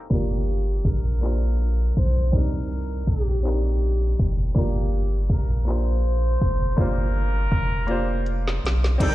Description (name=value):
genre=slow six-eight R&B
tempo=54 BPM (dotted quarters)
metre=6/8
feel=straight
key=unclear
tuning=A4 = 440 Hz
part: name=warm baby grand piano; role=accompaniment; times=0.0-9.1 s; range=Bb3 to C5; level=-30 LUFS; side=equal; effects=slapback echo
part: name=warm viola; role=melody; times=0.1-9.1 s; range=G4 to G5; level=-31 LUFS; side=left 1 dB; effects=slapback echo
part: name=round analog bass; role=bass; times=0.1-9.1 s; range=F1 to C2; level=-22 LUFS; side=equal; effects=none
part: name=smooth R&B drum kit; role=drums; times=0.1-9.1 s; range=crash cymbal, handclaps, hi-hat, kick drum, snare drum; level=-22 LUFS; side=equal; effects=none
part: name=warm horn section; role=stabs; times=9.0-9.1 s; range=Bb2 to Eb4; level=-35 LUFS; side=right 5 dB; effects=none
room=little or no reverb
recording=live gig heard through the venue's PA, recital hall reverb, low-pass filter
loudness=-20 LUFS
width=side -16 dB against mid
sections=0.1-9.0 A section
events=filter sweep 0.1-9.0; drum fill 7.9-9.0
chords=0.1 Gm7; 2.3 Cm9; 4.6 Gm7